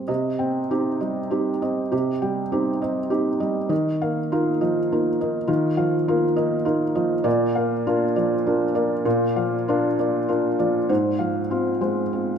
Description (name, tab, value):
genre	neoclassical minimalist piano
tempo	99 BPM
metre	3/4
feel	rubato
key	C minor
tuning	A4 = 440 Hz
part	felt-muted upright piano	solo	0.0-12.4 s	Ab2 to G5	-20 LUFS	equal	none
room	moderate scoring stage reverb, RT60 1.7 s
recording	minimal, uncompressed stereo recording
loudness	-20 LUFS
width	side -7 dB against mid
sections	0.1-12.4 A section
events	none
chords	0.1 Cm; 3.7 Ebsus2; 7.3 Bb; 10.9 Fm/Ab